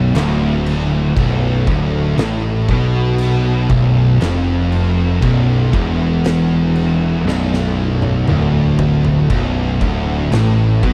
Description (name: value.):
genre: stoner and doom metal.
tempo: 59 BPM.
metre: 4/4.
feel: straight.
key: unclear.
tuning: A4 = 440 Hz.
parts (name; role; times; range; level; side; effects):
heavy high-gain guitar; riff; 0.0-10.9 s; B1 to B2; -26 LUFS; equal; distortion.
thick fuzz guitar; riff; 0.0-10.9 s; B1 to B2; -20 LUFS; equal; distortion.
thick fuzz guitar; riff; 0.0-10.9 s; B1 to B2; -22 LUFS; equal; none.
fuzz picked electric bass; bass; 0.0-10.9 s; B0 to B1; -21 LUFS; equal; overdrive.
oversized low-tuned drum kit; drums; 0.1-10.9 s; crash cymbal, kick drum, snare drum, toms; -25 LUFS; equal; none.
room: small room ambience.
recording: none.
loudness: -15 LUFS.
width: mono.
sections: 0.0-10.9 A section.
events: drum fill 7.3-9.3.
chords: 0.0 Bm.